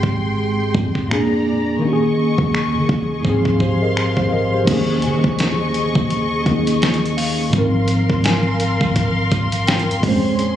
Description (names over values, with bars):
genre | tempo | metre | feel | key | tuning
contemporary R&B | 84 BPM | 4/4 | swing 58% on 16ths | unclear | A4 = 440 Hz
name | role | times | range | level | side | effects
mellow tine electric piano | accompaniment | 0.0-10.6 s | Ab2 to F5 | -18 LUFS | equal | medium stereo tremolo
warm studio string section | sustained chords | 0.0-10.6 s | Ab3 to Db6 | -24 LUFS | left 1 dB | sidechain pumping
warm 808-style bass | bass | 0.0-10.6 s | Ab1 to Eb3 | -25 LUFS | equal | none
dusty soul sampler-style drum kit | drums | 0.0-10.6 s | crash cymbal, finger snaps, hi-hat, kick drum, snare drum | -21 LUFS | equal | none
impact | sound effects | 4.8-7.5 s | none | -32 LUFS | left 1 dB | none
small celesta | texture | 5.0-10.3 s | F5 to Db6 | -32 LUFS | left 2 dB | stereo widening, digital delay
room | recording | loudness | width
light reverb | recorded on a phone in the room, club reverb, compression | -15 LUFS | side -11 dB against mid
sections
0.0-4.7 A section; 4.7-10.6 B section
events
impact 4.7-7.5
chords
0.0 Abmaj7; 1.1 Bb7; 1.8 Eb7sus4; 3.2 Ab6; 4.7 Eb7sus4; 7.5 Ab69; 10.0 Bbm9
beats
0.39 1.10 | 1.82 2.53 3.25 3.96 | 4.67 5.39 6.10 6.82 | 7.53 8.25 8.96 9.68 | 10.39